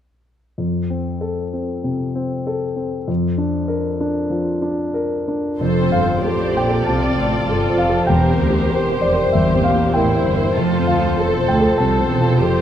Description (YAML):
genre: classical, romantic movement for piano and orchestra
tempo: 97 BPM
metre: 4/4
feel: rubato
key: F major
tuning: A4 = 441 Hz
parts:
  - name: warm concert grand piano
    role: melody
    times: 0.6-12.6 s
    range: E2 to A5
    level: -18 LUFS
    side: left 1 dB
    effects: none
  - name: rich studio violin section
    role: melody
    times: 5.6-12.6 s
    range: A4 to D5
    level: -26 LUFS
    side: left 2 dB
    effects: none
  - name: warm studio violin section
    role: second line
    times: 5.6-12.6 s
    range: A4 to C5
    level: -26 LUFS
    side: left 1 dB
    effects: none
  - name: warm studio viola section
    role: accompaniment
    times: 5.6-12.6 s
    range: E4 to A4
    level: -24 LUFS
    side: right 3 dB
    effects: none
  - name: clear studio double bass section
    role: bass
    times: 5.6-12.6 s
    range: E1 to D2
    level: -23 LUFS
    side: right 3 dB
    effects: none
  - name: warm studio cello section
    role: bass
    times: 5.6-12.6 s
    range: C2 to C3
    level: -24 LUFS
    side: right 2 dB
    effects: none
room: moderate scoring stage reverb, RT60 1.9 s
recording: faint mains hum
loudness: -16 LUFS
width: side -10 dB against mid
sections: 0.6-5.6 A section; 5.6-12.6 B section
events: none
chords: 0.6 F; 3.1 Bb/F; 5.6 F; 8.1 C7/E; 10.6 F